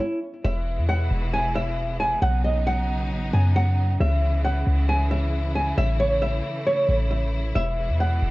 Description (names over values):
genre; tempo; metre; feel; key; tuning
hip hop, trap; 135 BPM; 4/4; half-time; E major; A4 = 444 Hz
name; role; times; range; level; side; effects
nylon-string guitar; melody; 0.0-8.3 s; E4 to G#5; -25 LUFS; equal; low-pass filter
warm studio string section; sustained chords; 0.4-8.3 s; B2 to E4; -30 LUFS; equal; none
clean 808-style bass; bass; 0.4-8.3 s; E1 to F#2; -22 LUFS; equal; none
room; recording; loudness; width
small room ambience; worn, warbling old tape, cassette tape, warbly pitch drift; -21 LUFS; side -19 dB against mid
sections
0.4-8.3 A section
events
stop 0.0-0.4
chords
0.4 E; 2.2 Badd9; 4.0 C#m; 5.8 A; 7.6 E